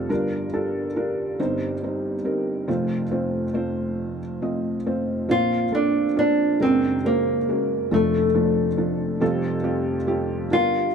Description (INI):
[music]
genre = acoustic folk-pop ballad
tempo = 46 BPM (dotted quarters)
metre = 6/8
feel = straight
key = unclear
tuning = A4 = 440 Hz
[part]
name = felt-muted upright piano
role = accompaniment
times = 0.0-10.9 s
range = F1 to F5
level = -23 LUFS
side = equal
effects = none
[part]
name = nylon-string guitar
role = melody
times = 5.3-10.9 s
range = A3 to F4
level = -21 LUFS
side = equal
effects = none
[sound]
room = light reverb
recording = dark, warm production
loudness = -21 LUFS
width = side -6 dB against mid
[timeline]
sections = 0.0-5.3 A section; 5.3-10.9 B section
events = none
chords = 0.1 Gm7; 1.4 Cm/G; 2.7 F; 5.3 Bbsus2; 6.6 Gbadd9; 7.9 Dm/F; 9.2 Fadd9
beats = | 0.09 1.39 | 2.68 3.99 | 5.30 6.61 | 7.91 9.21 | 10.50